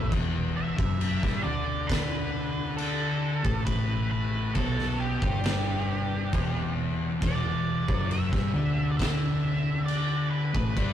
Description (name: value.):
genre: stoner and doom metal.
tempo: 68 BPM.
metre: 4/4.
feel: straight.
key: E minor.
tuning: A4 = 440 Hz.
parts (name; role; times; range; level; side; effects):
octave-fuzz lead guitar; melody; 0.0-10.9 s; G4 to E5; -34 LUFS; right 5 dB; distortion.
thick fuzz guitar; riff; 0.0-10.9 s; E2 to D4; -30 LUFS; left 3 dB; distortion.
hollow-body short-scale picked electric bass; bass; 0.0-10.9 s; E1 to D2; -32 LUFS; equal; tube saturation.
oversized low-tuned drum kit; drums; 0.1-10.9 s; crash cymbal, kick drum, snare drum; -30 LUFS; equal; none.
room: moderate booth ambience, RT60 0.2 s.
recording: rough rehearsal-room recording, warm saturation.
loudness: -25 LUFS.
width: side -10 dB against mid.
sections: 0.1-10.9 A section.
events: none.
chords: 0.1 Em.